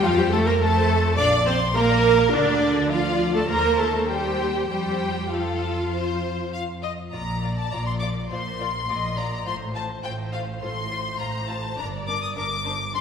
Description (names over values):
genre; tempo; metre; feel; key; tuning
quick classical-period movement for string orchestra; 103 BPM; 4/4; straight; Bb major; A4 = 440 Hz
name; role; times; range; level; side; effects
clear studio violin section; melody; 0.0-13.0 s; A4 to Eb6; -30 LUFS; left 5 dB; none
rich studio violin section; second line; 0.0-13.0 s; D4 to D6; -30 LUFS; left 2 dB; none
rich studio viola section; accompaniment; 0.0-13.0 s; D4 to Eb5; -24 LUFS; right 2 dB; none
rich studio cello section; bass; 0.0-13.0 s; G2 to D4; -30 LUFS; right 2 dB; none
rich studio double bass section; bass; 0.0-13.0 s; G1 to F2; -28 LUFS; right 1 dB; none
room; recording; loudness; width
wet scoring stage reverb, RT60 1.7 s; heard from further back in the room; -21 LUFS; side -7 dB against mid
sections
0.0-7.1 A section; 7.1-13.0 B section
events
none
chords
0.0 F; 1.2 Bb; 2.3 Dm; 3.5 Cm/Eb; 4.7 F; 7.1 Bb; 9.5 F/A; 11.8 Gm